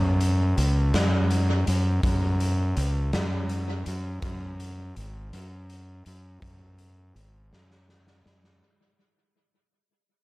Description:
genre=psychedelic rock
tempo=55 BPM (dotted quarters)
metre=6/8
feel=straight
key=unclear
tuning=A4 = 440 Hz
part: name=fuzz fingered electric bass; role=bass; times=0.0-8.6 s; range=G#1 to F#2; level=-24 LUFS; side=equal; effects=overdrive
part: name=raw garage drum kit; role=drums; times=0.2-8.6 s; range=hi-hat, kick drum, snare drum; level=-30 LUFS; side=equal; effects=tape echo
room=little or no reverb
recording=echo-heavy mix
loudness=-23 LUFS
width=side -21 dB against mid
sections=0.0-8.6 A section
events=fade-out 0.0-8.6; drum fill 7.5-8.6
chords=none

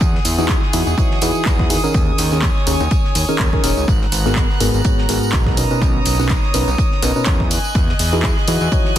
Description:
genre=piano house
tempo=124 BPM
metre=4/4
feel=swing 55% on 16ths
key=unclear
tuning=A4 = 440 Hz
part: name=clear chamber violin section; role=sustained chords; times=0.0-9.0 s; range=B3 to F#6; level=-24 LUFS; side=right 1 dB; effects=sidechain pumping
part: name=fat analog bass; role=bass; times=0.0-9.0 s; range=D#1 to E2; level=-20 LUFS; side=equal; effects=tube saturation, sidechain pumping
part: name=deep reggae drum kit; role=drums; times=0.0-9.0 s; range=hi-hat, snare drum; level=-32 LUFS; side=right 5 dB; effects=sidechain pumping on hats, high-pass filter on hats, high-pass filter on snare, high-pass filter on room
part: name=electronic kick drum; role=drums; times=0.0-8.8 s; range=none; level=-18 LUFS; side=equal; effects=overdrive
part: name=tambourine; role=percussion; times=0.0-9.0 s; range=none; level=-29 LUFS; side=equal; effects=none
part: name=punchy analog drum machine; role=drums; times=0.3-9.0 s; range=handclaps, hi-hat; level=-24 LUFS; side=equal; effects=none
part: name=percussive organ stab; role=riff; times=0.4-9.0 s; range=G#2 to C#5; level=-20 LUFS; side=equal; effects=chorus, sidechain pumping, ping-pong delay
room=light reverb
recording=dense, heavily limited modern master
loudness=-14 LUFS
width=side -11 dB against mid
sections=0.0-9.0 A section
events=none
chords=0.0 Emaj9; 1.9 D#7sus4; 3.9 G#m9; 5.6 Bmaj9; 7.5 Emaj9

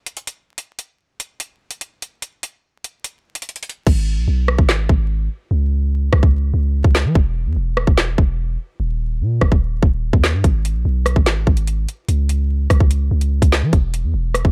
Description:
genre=hip hop, drill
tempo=146 BPM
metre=4/4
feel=half-time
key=G# minor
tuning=A4 = 443 Hz
part: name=drill drum kit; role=drums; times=0.1-14.5 s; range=crash cymbal, handclaps, hi-hat, kick drum, rim click, snare drum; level=-18 LUFS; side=equal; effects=none
part: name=long sustained 808-style bass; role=bass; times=3.9-14.5 s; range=D#1 to E3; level=-20 LUFS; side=equal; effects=none
room=little or no reverb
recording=vinyl crackle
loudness=-18 LUFS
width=mono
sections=0.0-3.9 A section; 3.9-14.5 B section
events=hi-hats muted 3.9-10.4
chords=none

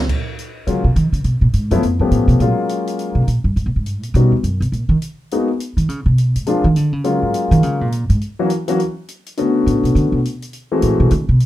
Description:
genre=jazz piano trio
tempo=207 BPM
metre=4/4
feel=swing 61% on 8ths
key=Eb minor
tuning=A4 = 444 Hz
part: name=upright bass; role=bass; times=0.0-11.4 s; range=Eb2 to Eb3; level=-15 LUFS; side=right 1 dB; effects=none
part: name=open jazz drum kit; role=drums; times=0.1-11.5 s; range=crash cymbal, hi-hat, kick drum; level=-30 LUFS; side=right 2 dB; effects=none
part: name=warm concert grand piano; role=melody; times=0.7-11.1 s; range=D3 to G4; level=-17 LUFS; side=left 3 dB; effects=none
room=moderate club reverb, RT60 0.5 s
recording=dark, warm production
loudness=-15 LUFS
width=side -14 dB against mid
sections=0.1-9.4 A section; 9.4-11.5 A section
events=upright bass solo 0.1-11.5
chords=0.1 Eb7(no3); 1.2 Abm9; 1.8 Dbaug7; 2.4 Gbmaj9; 3.6 Gm; 4.1 Eb7alt; 4.7 Absus2 (rootless); 5.9 Abmadd11; 6.5 Bb7; 7.0 Ebm11; 8.2 N.C.; 9.4 Bm7; 10.5 F#m7b5

